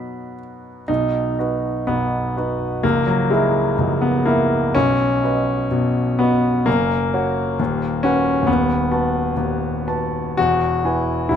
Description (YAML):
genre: classical, romantic character piece for solo piano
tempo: 57-69 BPM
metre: 2/4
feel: rubato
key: B major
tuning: A4 = 438 Hz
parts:
  - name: clear grand piano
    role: solo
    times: 0.0-11.4 s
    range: C#1 to B5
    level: -17 LUFS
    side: left 1 dB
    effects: none
room: moderate recital hall reverb, RT60 1.5 s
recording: close, detailed microphones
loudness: -17 LUFS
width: side -8 dB against mid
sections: 0.9-11.4 A section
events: none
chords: 0.0 B; 2.8 A#dim/C#; 4.7 B; 6.7 F#; 7.6 B/D#; 8.5 B7/D#; 10.4 E